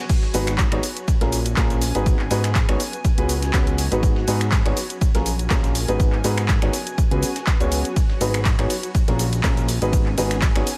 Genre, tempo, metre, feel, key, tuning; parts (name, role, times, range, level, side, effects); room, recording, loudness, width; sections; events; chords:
piano house; 122 BPM; 4/4; swing 54% on 16ths; G# dorian; A4 = 440 Hz
granular cloud pad; texture; 0.0-10.8 s; C#4 to G#5; -35 LUFS; equal; built-in reverb, sidechain pumping
dusty soul sampler-style drum kit; drums; 0.1-10.8 s; hi-hat, ride cymbal, snare drum; -39 LUFS; equal
electronic kick drum; drums; 0.1-10.5 s; -22 LUFS; equal
house drum kit; drums; 0.1-10.8 s; cabasa, crash cymbal, finger snaps, handclaps, hi-hat, ride cymbal; -30 LUFS; equal; overdrive
warm grand piano; riff; 0.3-10.7 s; A#3 to C#5; -28 LUFS; equal; sidechain pumping, delay
fat analog bass; bass; 0.3-10.6 s; G#1 to G#2; -26 LUFS; equal; sidechain pumping
digital ambience; -20 LUFS; mono
0.0-10.8 A section
0.1 G#m7; 0.8 A#m7; 1.8 G#m7; 4.8 A#m7; 5.8 G#m7; 6.7 C#7sus4; 8.0 G#m7; 8.7 A#m7; 9.7 G#m7